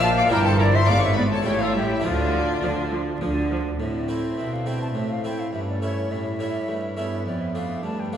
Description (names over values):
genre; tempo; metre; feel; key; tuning
classical, baroque-style concerto movement with solo episodes; 104 BPM; 3/4; straight; D minor, A minor from 3.8 s; A4 = 440 Hz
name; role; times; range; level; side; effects
concert flute; melody; 0.0-8.2 s; F4 to A5; -27 LUFS; left 2 dB; none
rich chamber violin section; melody; 0.0-8.2 s; E4 to F6; -31 LUFS; left 4 dB; none
rich studio violin section; second line; 0.0-8.2 s; C4 to F5; -31 LUFS; left 2 dB; none
harpsichord; accompaniment; 0.0-8.2 s; F2 to G4; -29 LUFS; right 1 dB; none
rich studio viola section; accompaniment; 0.0-8.2 s; F3 to F4; -31 LUFS; right 1 dB; none
rich studio double bass section; bass; 0.0-3.7 s; G1 to D2; -27 LUFS; right 1 dB; none
rich symphonic cello section; bass; 0.0-8.2 s; F2 to D3; -27 LUFS; right 1 dB; none
room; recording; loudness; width
wet concert hall reverb, RT60 2.5 s; minimal, uncompressed stereo recording, vinyl crackle; -21 LUFS; side -9 dB against mid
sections
0.0-3.8 A section; 3.8-8.2 B section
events
none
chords
0.3 Edim/G; 0.9 G#dim7; 1.5 A7; 2.0 Dm; 3.8 Am; 5.5 A7/G; 7.3 Dm/F